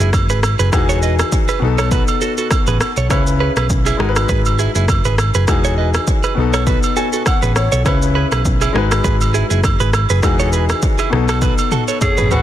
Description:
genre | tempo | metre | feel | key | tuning
afrobeats | 101 BPM | 4/4 | swing 55% on 16ths | unclear | A4 = 440 Hz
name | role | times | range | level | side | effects
clear baby grand piano | accompaniment | 0.0-12.4 s | B2 to G#5 | -21 LUFS | left 7 dB | none
direct-recorded clean electric guitar | riff | 0.0-12.3 s | D#4 to D#5 | -22 LUFS | right 8 dB | digital delay
hollow-body short-scale picked electric bass | bass | 0.0-12.4 s | E1 to C#2 | -17 LUFS | equal | none
deep house drum kit | drums | 0.0-12.4 s | kick drum, rim click, shaker, toms | -18 LUFS | equal | overdrive
agogo bells | percussion | 0.1-12.4 s | none | -24 LUFS | right 7 dB | none
growling alto saxophone | melody | 12.0-12.4 s | F#4 to G#4 | -17 LUFS | right 1 dB | none
room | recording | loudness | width
small room ambience | dense, heavily limited modern master | -13 LUFS | side -12 dB against mid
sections
0.0-12.4 A section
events
grand piano fill 6.7-7.9; drum fill 11.4-12.4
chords
0.0 G#m7; 0.7 Emaj9; 1.6 B7; 3.1 C#m7; 4.0 G#m7; 5.5 Emaj9; 6.4 B7; 7.9 C#m7; 8.7 G#m7; 10.2 Emaj9; 11.1 B7

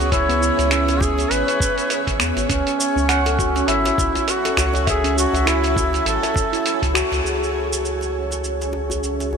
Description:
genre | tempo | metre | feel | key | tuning
organic downtempo | 101 BPM | 4/4 | swing 58% on 16ths | C# minor | A4 = 442 Hz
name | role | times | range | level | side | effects
warm duduk | melody | 0.0-6.9 s | C#4 to B4 | -24 LUFS | equal | ping-pong delay, shimmer reverb
granular cloud pad | sustained chords | 0.0-9.4 s | C#4 to G#5 | -26 LUFS | right 2 dB | built-in reverb, sidechain pumping, shimmer reverb
round analog bass | bass | 0.0-9.4 s | G#1 to E2 | -24 LUFS | equal | none
dusty soul sampler-style drum kit | drums | 0.0-9.3 s | finger snaps, hi-hat, shaker | -24 LUFS | right 2 dB | none
djembe | percussion | 0.0-9.4 s | none | -33 LUFS | left 1 dB | none
bronze singing bowl | texture | 0.0-9.4 s | G#4 to G#5 | -34 LUFS | equal | none
handpan | arpeggios | 0.1-7.1 s | B3 to F#5 | -23 LUFS | equal | digital delay, shimmer reverb
electronic kick drum | drums | 0.1-6.9 s | none | -24 LUFS | equal | none
room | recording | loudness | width
moderate lush hall reverb, RT60 2.9 s | none | -17 LUFS | side -6 dB against mid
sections
0.0-7.2 A section; 7.2-9.4 B section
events
band accent 6.9; filter sweep on ambient pad 7.2-9.4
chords
0.0 C#m7; 2.5 F#m7; 7.2 C#m

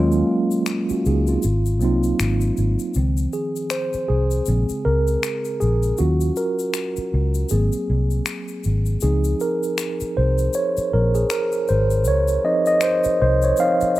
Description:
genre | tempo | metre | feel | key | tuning
R&B, neo-soul | 79 BPM | 4/4 | swing 58% on 16ths | Db major | A4 = 439 Hz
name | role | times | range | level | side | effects
mellow tine electric piano | accompaniment | 0.0-14.0 s | Db3 to F5 | -20 LUFS | right 1 dB | medium stereo tremolo
vintage muted fingered electric bass | bass | 0.0-13.9 s | Ab1 to Eb2 | -20 LUFS | equal | none
egg shaker and finger snaps | percussion | 0.1-14.0 s | none | -30 LUFS | left 7 dB | none
room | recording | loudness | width
little or no reverb | none | -18 LUFS | side -16 dB against mid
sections
0.0-2.9 A section; 2.9-14.0 B section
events
tine electric piano solo 2.9-14.0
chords
0.0 Ebm11; 1.4 Ab13; 2.9 Dbmaj9; 4.5 Bbm7; 6.0 Ebm7; 7.5 Ab9; 9.0 Dbmaj9

